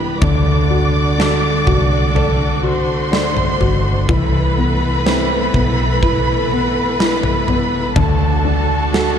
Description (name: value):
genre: pop ballad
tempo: 62 BPM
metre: 4/4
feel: straight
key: unclear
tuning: A4 = 440 Hz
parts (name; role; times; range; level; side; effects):
- dark symphonic violin section; second line; 0.0-9.2 s; A4 to D6; -21 LUFS; right 1 dB; ping-pong delay
- felt-muted upright piano; accompaniment; 0.0-9.2 s; D3 to D5; -21 LUFS; left 6 dB; none
- rich studio string section; sustained chords; 0.0-9.2 s; E3 to B4; -24 LUFS; left 1 dB; none
- flamenco guitar; arpeggios; 0.0-9.2 s; D3 to B4; -23 LUFS; right 8 dB; ping-pong delay
- vintage muted fingered electric bass; bass; 0.0-9.2 s; G1 to D2; -19 LUFS; equal; none
- huge arena drum kit; drums; 0.2-9.2 s; kick drum, snare drum, toms; -20 LUFS; equal; none
room: light reverb, small room ambience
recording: dark, warm production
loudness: -13 LUFS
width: side -8 dB against mid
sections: 0.0-9.2 A section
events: none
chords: 0.2 D; 4.1 Amadd9; 8.0 D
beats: | 0.22 1.19 2.16 3.13 | 4.09 5.06 6.03 7.00 | 7.96 8.93